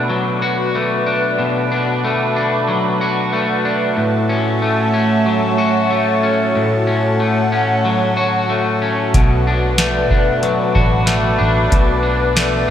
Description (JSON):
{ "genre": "dream pop", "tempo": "93 BPM", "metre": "4/4", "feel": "straight", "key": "B minor", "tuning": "A4 = 440 Hz", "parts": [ { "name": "phased analog pad", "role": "sustained chords", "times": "0.0-12.7 s", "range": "A3 to A5", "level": "-19 LUFS", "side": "right 1 dB", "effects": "phaser, chorus" }, { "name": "electric guitar at the edge of break-up", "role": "arpeggios", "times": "0.0-12.7 s", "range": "A2 to F#4", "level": "-17 LUFS", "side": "left 2 dB", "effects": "lush chorus, digital delay" }, { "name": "vintage muted fingered electric bass", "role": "bass", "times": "9.1-12.6 s", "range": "F#1 to B1", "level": "-19 LUFS", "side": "equal", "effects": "none" }, { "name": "booming analog drum machine", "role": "drums", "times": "9.1-12.5 s", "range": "hi-hat, kick drum, snare drum", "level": "-16 LUFS", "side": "equal", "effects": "gated reverb" } ], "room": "wet plate reverb, RT60 3.1 s", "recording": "bright 1980s-style digital production", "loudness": "-14 LUFS", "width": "side -10 dB against mid", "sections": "0.0-12.7 A section", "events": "none", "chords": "0.0 Bm7; 4.0 F#m7/A; 9.1 Bm7", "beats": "0.11 0.75 | 1.40 2.04 2.69 3.33 | 3.98 4.62 5.27 5.92 | 6.56 7.21 7.85 8.50 | 9.14 9.79 10.43 11.08 | 11.72 12.37" }